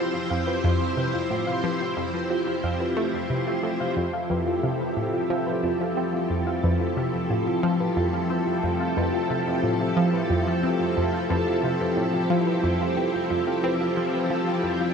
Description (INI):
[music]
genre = ambient, sequencer-driven space music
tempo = 90 BPM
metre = 4/4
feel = straight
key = F major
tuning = A4 = 441 Hz
[part]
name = string machine, full ensemble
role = sustained chords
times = 0.0-14.9 s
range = F3 to D5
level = -25 LUFS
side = equal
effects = ensemble chorus
[part]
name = thumb-piano-like synth pluck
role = arpeggios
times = 0.0-14.9 s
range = F4 to F5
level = -31 LUFS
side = moving between left 3 dB and right 6 dB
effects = chorus, auto-pan, vintage 12-bit sampler grit, tape echo
[part]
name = analog pluck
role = riff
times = 0.0-14.7 s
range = F2 to C4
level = -27 LUFS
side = equal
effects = chorus, phaser, tape echo
[part]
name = bubbling stepped-filter texture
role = texture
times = 7.6-14.9 s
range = none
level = barely audible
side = none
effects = none
[sound]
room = wet lush hall reverb, RT60 3.1 s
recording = dreamy mix soaked in reverb, cassette tape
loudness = -22 LUFS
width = side -6 dB against mid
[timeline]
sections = 0.0-4.0 A section; 4.0-14.9 B section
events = none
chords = 0.0 Fmaj7(no3); 4.0 Fmaj7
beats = 0.64 | 1.30 1.97 2.64 3.31 | 3.97 4.64 5.30 5.97 | 6.64 7.30 7.97 8.64 | 9.30 9.97 10.64 11.30 | 11.97 12.64 13.30 13.97 | 14.64